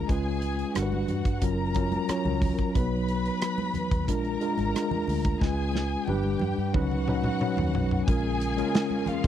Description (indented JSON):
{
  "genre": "lush 1970s-style soul",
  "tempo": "90 BPM",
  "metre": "4/4",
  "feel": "straight",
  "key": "unclear",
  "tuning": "A4 = 438 Hz",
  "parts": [
    { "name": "warm symphonic string section", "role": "second line", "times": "0.0-9.3 s", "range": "E#4 to B5", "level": "-34 LUFS", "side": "left 2 dB", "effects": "none" },
    { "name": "mellow tine electric piano", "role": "accompaniment", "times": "0.0-9.3 s", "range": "F#3 to C#5", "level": "-28 LUFS", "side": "left 1 dB", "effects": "medium stereo tremolo" },
    { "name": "vintage muted fingered electric bass", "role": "bass", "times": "0.0-9.3 s", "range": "F#1 to G2", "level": "-30 LUFS", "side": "equal", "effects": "none" },
    { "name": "modern studio drum kit", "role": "drums", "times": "0.1-9.3 s", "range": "hi-hat, kick drum, rim click, snare drum, toms", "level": "-28 LUFS", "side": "equal", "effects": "none" },
    { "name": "congas", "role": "percussion", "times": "0.1-9.2 s", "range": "none", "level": "-38 LUFS", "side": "right 3 dB", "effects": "none" },
    { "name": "phased string machine", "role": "sustained chords", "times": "8.1-9.3 s", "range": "C#3 to G#4", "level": "-37 LUFS", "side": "right 2 dB", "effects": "ensemble chorus, phaser" }
  ],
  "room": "little or no reverb",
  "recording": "dry, close 1970s-style studio recording",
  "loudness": "-24 LUFS",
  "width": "side -10 dB against mid",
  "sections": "0.0-8.1 A section; 8.1-9.3 B section",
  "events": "drum fill 5.4-8.1",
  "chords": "0.1 C#7; 0.8 Gmaj7; 1.4 F#maj7; 2.8 B; 4.1 A#7; 5.4 C#7; 6.1 G; 6.7 C#9sus4; 8.1 A#m7"
}